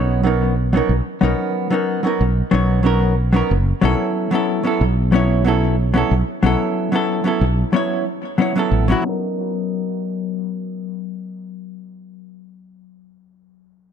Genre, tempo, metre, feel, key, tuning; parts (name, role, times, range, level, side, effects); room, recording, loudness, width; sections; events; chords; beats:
sunset chillout; 92 BPM; 4/4; straight; B major; A4 = 441 Hz
hollow-body jazz guitar; accompaniment; 0.0-13.9 s; F#3 to C#5; -18 LUFS; moving between left 10 dB and right 2 dB; auto-pan, digital delay
mellow fretless electric bass; bass; 0.0-8.9 s; F#1 to B1; -17 LUFS; equal
moderate concert hall reverb, RT60 1.9 s; low-pass filter; -16 LUFS; side -8 dB against mid
0.0-9.1 A section; 9.1-13.9 B section
filter sweep 9.1-13.9
0.0 Bmaj9; 3.8 A6/B; 9.1 Bmaj9
0.57 | 1.23 1.88 2.53 3.18 | 3.83 4.49 5.14 5.79 | 6.44 7.09 7.75 8.40 | 9.05 9.70 10.36 11.01 | 11.66 12.31 12.96 13.62